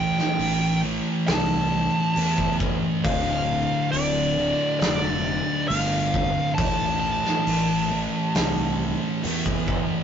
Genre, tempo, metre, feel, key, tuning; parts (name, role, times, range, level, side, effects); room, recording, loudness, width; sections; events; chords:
stoner and doom metal; 68 BPM; 4/4; straight; A4 = 440 Hz
fuzz lead guitar; melody; 0.0-9.6 s; D5 to A5; -26 LUFS; equal; wah, distortion
thick fuzz guitar; riff; 0.0-10.0 s; D2 to A3; -28 LUFS; left 7 dB; distortion
thick fuzz guitar; riff; 0.0-10.0 s; D2 to A3; -27 LUFS; right 6 dB; distortion
fuzz fingered electric bass; bass; 0.0-9.8 s; D1 to E2; -30 LUFS; equal; overdrive
oversized low-tuned drum kit; drums; 0.2-9.9 s; hi-hat, kick drum, snare drum; -28 LUFS; equal
light reverb; rough rehearsal-room recording, warm saturation, nothing above 7.6 kHz; -21 LUFS; side -8 dB against mid
0.0-10.0 A section
0.0 Am; 3.0 Dm; 6.6 Am